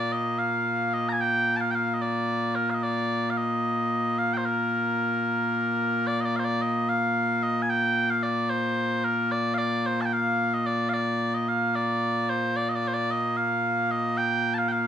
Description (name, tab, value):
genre	scottish traditional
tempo	74 BPM (dotted quarters)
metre	6/8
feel	straight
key	Bb major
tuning	A4 = 441 Hz
part	mellow small bagpipes	solo	0.0-14.9 s	Bb2 to Bb5	-24 LUFS	equal	none
room	moderate studio reverb, RT60 0.6 s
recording	band playing live in one room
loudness	-24 LUFS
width	side -9 dB against mid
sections	0.0-6.1 A section; 6.1-14.9 A section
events	none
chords	none